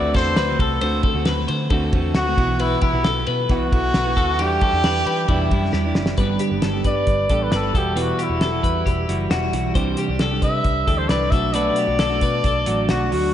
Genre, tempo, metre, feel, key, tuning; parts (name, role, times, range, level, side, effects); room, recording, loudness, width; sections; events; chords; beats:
jangly indie pop; 134 BPM; 4/4; straight; E minor; A4 = 440 Hz
warm trumpet; melody; 0.0-13.3 s; E4 to E5; -23 LUFS; equal; slapback echo
semi-hollow electric guitar; accompaniment; 0.0-13.3 s; E2 to G4; -25 LUFS; right 2 dB; slapback echo
twelve-string electric guitar; arpeggios; 0.0-13.3 s; E4 to C5; -26 LUFS; left 5 dB; slapback echo
vintage muted picked electric bass; bass; 0.0-13.3 s; E1 to E3; -24 LUFS; equal
cloth-damped thuddy drum kit; drums; 0.1-13.2 s; hi-hat, kick drum, ride cymbal, snare drum; -23 LUFS; equal
moderate lush hall reverb, RT60 2.3 s; big arena sound, nothing above 10.6 kHz; -17 LUFS; side -10 dB against mid
0.0-6.2 A section; 6.2-13.3 B section
drum fill 5.7-6.2
0.0 D7; 2.4 Bsus4; 4.4 Em7; 6.2 G; 7.7 Emadd9; 9.8 Cadd9; 11.3 Bm7
0.37 | 0.82 1.26 1.71 2.15 | 2.60 3.05 3.49 3.94 | 4.38 4.83 5.28 5.72 | 6.17 6.62 7.07 7.52 | 7.96 8.41 8.86 9.31 | 9.76 10.21 10.65 11.10 | 11.55 12.00 12.45 12.90